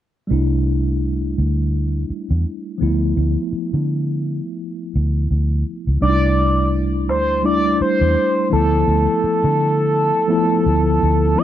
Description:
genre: R&B, neo-soul.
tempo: 84 BPM.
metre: 4/4.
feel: swing 58% on 16ths.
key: unclear.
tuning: A4 = 439 Hz.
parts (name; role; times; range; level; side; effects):
mellow tine electric piano; accompaniment; 0.3-11.4 s; F3 to E4; -21 LUFS; left 1 dB; medium stereo tremolo.
vintage muted fingered electric bass; bass; 0.3-11.3 s; C2 to D3; -18 LUFS; equal; none.
expressive synth lead; melody; 6.0-11.4 s; A4 to E5; -18 LUFS; equal; chorus, tape echo.
room: little or no reverb.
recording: dry, close 1970s-style studio recording.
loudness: -16 LUFS.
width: side -11 dB against mid.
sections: 0.3-6.0 A section; 6.0-11.4 B section.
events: none.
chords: 0.3 C6; 2.8 Dm69; 6.0 C6; 8.5 Dm69.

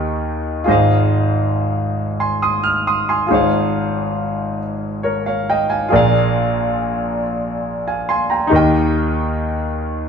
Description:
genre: gospel.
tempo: 46 BPM (dotted quarters).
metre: 6/8.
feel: straight.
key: Ab major.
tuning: A4 = 440 Hz.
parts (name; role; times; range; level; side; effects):
clear grand piano; solo; 0.0-10.1 s; Ab1 to F6; -16 LUFS; equal; none.
room: wet stone room reverb, RT60 1.3 s.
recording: band playing live in one room.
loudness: -15 LUFS.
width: side -6 dB against mid.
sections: 0.0-10.1 A section.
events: none.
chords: 0.0 Eb; 0.7 Ab6; 3.3 Dbmaj7/Ab; 5.9 Bb7; 8.5 Eb.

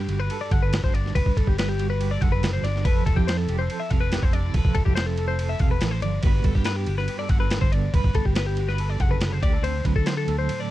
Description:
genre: math rock and midwest emo.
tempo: 141 BPM.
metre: 4/4.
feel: straight.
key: G major.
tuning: A4 = 439 Hz.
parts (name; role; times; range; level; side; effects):
clean electric guitar; accompaniment; 0.0-10.7 s; G2 to B4; -30 LUFS; right 8 dB; tremolo.
twelve-string electric guitar; arpeggios; 0.0-10.7 s; G4 to F#5; -29 LUFS; left 8 dB; none.
fingered electric bass; bass; 0.0-10.5 s; E1 to D3; -25 LUFS; equal; none.
boom bap sampler-style drum kit; drums; 0.1-10.6 s; kick drum, ride cymbal, snare drum; -24 LUFS; equal; none.
room: little or no reverb.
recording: dark, warm production.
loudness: -20 LUFS.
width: side -15 dB against mid.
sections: 0.0-10.7 A section.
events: none.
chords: 0.0 Gmaj7; 2.8 Fmaj7; 6.2 Gmaj7; 9.4 D7.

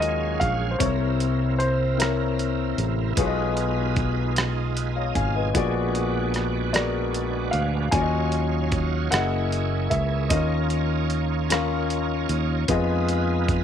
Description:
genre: slow gospel.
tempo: 50 BPM (dotted quarters).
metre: 6/8.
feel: straight.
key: unclear.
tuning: A4 = 440 Hz.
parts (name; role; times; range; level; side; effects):
warm baby grand piano; melody; 0.0-2.8, 6.7-11.8 s; Bb4 to Ab5; -28 LUFS; equal; none.
warm baby grand piano; accompaniment; 0.0-13.6 s; Bb2 to Ab5; -27 LUFS; left 10 dB; none.
bright tonewheel organ; sustained chords; 0.0-13.6 s; Gb3 to Ab5; -31 LUFS; right 14 dB; slow rotary speaker, overdrive, chorus vibrato.
fingered electric bass; bass; 0.0-13.6 s; Gb1 to F2; -25 LUFS; right 2 dB; none.
dusty soul sampler-style drum kit; drums; 0.0-13.6 s; hi-hat, kick drum, rim click; -27 LUFS; right 2 dB; overdrive.
room: digital ambience.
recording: 1960s-style stereo with parts hard left and right.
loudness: -21 LUFS.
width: side -8 dB against mid.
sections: 0.0-13.6 A section.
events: none.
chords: 0.0 Ebm11; 0.8 C7b9; 3.2 Fm7b5/Cb; 5.6 Bb7b9b13; 7.9 Ebm9; 9.1 Gb13; 10.3 Bbmadd11/Eb; 12.7 Fm7b5.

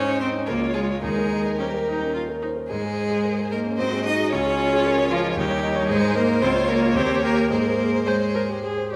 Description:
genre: quick classical-period movement for piano quintet.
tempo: 111 BPM.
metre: 3/4.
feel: uneven beats, rubato.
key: Ab major.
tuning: A4 = 440 Hz.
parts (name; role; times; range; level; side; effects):
rich violin; melody; 0.0-8.6 s; F4 to Eb5; -29 LUFS; equal; none.
clear cello; second line; 0.0-8.6 s; F3 to Eb4; -26 LUFS; equal; none.
rich violin; second line; 0.0-9.0 s; Bb4 to Eb5; -33 LUFS; equal; none.
clear viola; accompaniment; 0.0-9.0 s; Db4 to C5; -32 LUFS; equal; none.
warm concert grand piano; accompaniment; 0.0-9.0 s; Db2 to Db5; -28 LUFS; equal; none.
room: wet scoring stage reverb, RT60 1.9 s.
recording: none.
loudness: -22 LUFS.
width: mono.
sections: 0.0-9.0 A section.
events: none.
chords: 0.5 Db; 1.0 Eb; 2.7 Ab; 3.8 Ab7; 4.3 Db; 5.4 Eb7; 5.9 Ab; 6.4 Db; 7.0 Eb7; 7.5 Ab.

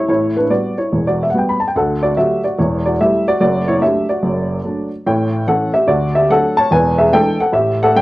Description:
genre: jazz, stride piano.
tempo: 145 BPM.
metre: 4/4.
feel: swing 65% on 8ths.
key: D major.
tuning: A4 = 438 Hz.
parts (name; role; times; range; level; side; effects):
dark upright piano; solo; 0.0-8.0 s; E1 to B5; -13 LUFS; equal; none.
room: moderate club reverb, RT60 0.8 s.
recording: worn, warbling old tape, cassette tape, warbly pitch drift.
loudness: -13 LUFS.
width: side -18 dB against mid.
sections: 0.0-8.0 A section.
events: none.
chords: 0.1 Asus2; 1.7 D; 2.6 A5/E; 3.4 D/F#; 5.0 A7; 5.9 D; 6.7 E7.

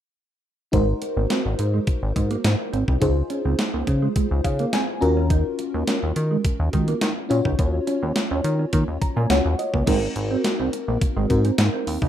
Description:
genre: early-eighties boogie funk.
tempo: 105 BPM.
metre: 4/4.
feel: straight.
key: unclear.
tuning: A4 = 440 Hz.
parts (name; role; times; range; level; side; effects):
FM electric piano with soft pad layer; accompaniment; 0.7-12.1 s; C4 to Bb5; -25 LUFS; left 2 dB; chorus.
mellow electric guitar; riff; 0.7-12.1 s; Ab3 to Eb4; -28 LUFS; right 5 dB; lush chorus.
chorused synth bass; bass; 0.7-12.1 s; Ab1 to Eb3; -22 LUFS; equal; none.
clean 12-bit digital drum machine; drums; 0.7-12.1 s; crash cymbal, hi-hat, kick drum, snare drum; -24 LUFS; equal; none.
room: moderate small room reverb, RT60 0.6 s.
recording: rough home demo mix.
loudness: -20 LUFS.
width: side -10 dB against mid.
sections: 0.7-9.9 A section; 9.9-12.1 B section.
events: FM electric piano fill 4.2-5.3, 8.7-9.9.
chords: 0.7 Ab7; 3.0 Dbmaj7; 5.0 Ebm7; 9.9 Ab7.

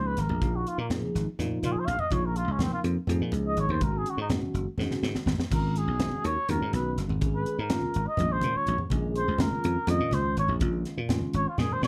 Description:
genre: electric jazz fusion.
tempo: 247 BPM (eighths).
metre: 7/8.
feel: straight.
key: Bb minor.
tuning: A4 = 440 Hz.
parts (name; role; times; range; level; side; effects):
trumpet with cup mute; melody; 0.0-11.9 s; Bb3 to F5; -33 LUFS; equal; slapback echo.
bell-like tine electric piano; accompaniment; 0.0-11.9 s; Eb3 to Bb4; -36 LUFS; equal; phaser.
dry thumbed slap bass; bass; 0.0-11.9 s; Gb1 to Bb2; -32 LUFS; equal; none.
crisp fusion drum kit; drums; 0.2-11.9 s; crash cymbal, hi-hat, kick drum, snare drum; -34 LUFS; equal; none.
congas; percussion; 0.2-11.9 s; none; -36 LUFS; equal; none.
room: light reverb.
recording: dark, warm production.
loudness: -28 LUFS.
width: mono.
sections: 0.0-11.9 A section.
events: muted trumpet solo 0.0-11.9; drum fill 4.8-5.5, 11.6.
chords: 0.0 Bbm7; 3.8 Ab9sus4; 8.2 Bbm7.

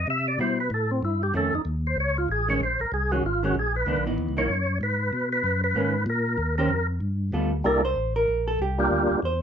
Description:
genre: soul jazz organ trio.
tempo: 190 BPM.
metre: 4/4.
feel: swing 61% on 8ths.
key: unclear.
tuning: A4 = 440 Hz.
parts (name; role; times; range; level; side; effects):
percussive tonewheel organ; melody; 0.0-9.2 s; G3 to E5; -25 LUFS; equal; slow rotary speaker, overdrive, chorus vibrato.
tonewheel organ; bass; 0.0-9.4 s; Ab1 to C3; -27 LUFS; left 1 dB; overdrive, chorus vibrato, slow rotary speaker.
vintage hollow-body jazz guitar; accompaniment; 0.4-9.4 s; Eb3 to C5; -26 LUFS; right 2 dB; none.
room: light reverb.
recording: nothing above 7.7 kHz.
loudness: -22 LUFS.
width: side -8 dB against mid.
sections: 0.0-7.6 A section; 7.6-9.4 A section.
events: tonewheel organ solo 0.0-7.6; hollow-body jazz guitar solo 7.6-9.4.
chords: 0.1 Cmaj7; 1.3 F7alt; 2.6 Bbm11; 3.9 Dbm9; 4.5 Gbsus2; 5.1 Bmaj9; 6.4 Eb13; 7.0 G9; 7.6 C13; 8.9 Gm7.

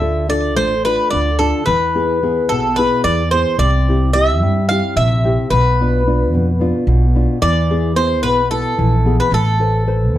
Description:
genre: greek folk, Greek bouzouki band.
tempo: 219 BPM (eighths).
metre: 7/8.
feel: straight.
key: unclear.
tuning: A4 = 440 Hz.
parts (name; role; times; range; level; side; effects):
Greek bouzouki; melody; 0.0-10.2 s; A4 to F5; -17 LUFS; equal; slapback echo.
nylon-string guitar; accompaniment; 0.0-10.2 s; B2 to C5; -20 LUFS; left 2 dB; none.
upright bass; bass; 0.0-10.2 s; A1 to G2; -17 LUFS; equal; none.
room: light reverb.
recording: dark, warm production.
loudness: -13 LUFS.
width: side -13 dB against mid.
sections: 0.0-10.2 A section.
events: none.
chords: 0.0 Dm; 1.7 E; 3.6 C; 5.5 Bdim; 7.4 E; 9.3 Amadd9.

